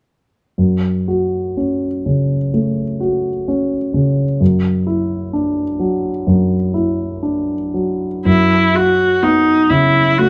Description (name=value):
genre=classical, impressionist duo for viola and grand piano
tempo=57-65 BPM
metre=4/4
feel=rubato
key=F# minor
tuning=A4 = 440 Hz
part: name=warm concert grand piano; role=accompaniment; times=0.6-10.3 s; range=F#2 to F#4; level=-18 LUFS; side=equal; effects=none
part: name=rich viola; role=melody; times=8.3-10.3 s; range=D#4 to F#4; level=-14 LUFS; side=equal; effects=none
room=light reverb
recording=dark, warm production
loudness=-16 LUFS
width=mono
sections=0.6-8.3 A section; 8.3-10.3 B section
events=none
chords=0.6 F#m; 4.4 Dadd9/F#; 8.3 F#sus4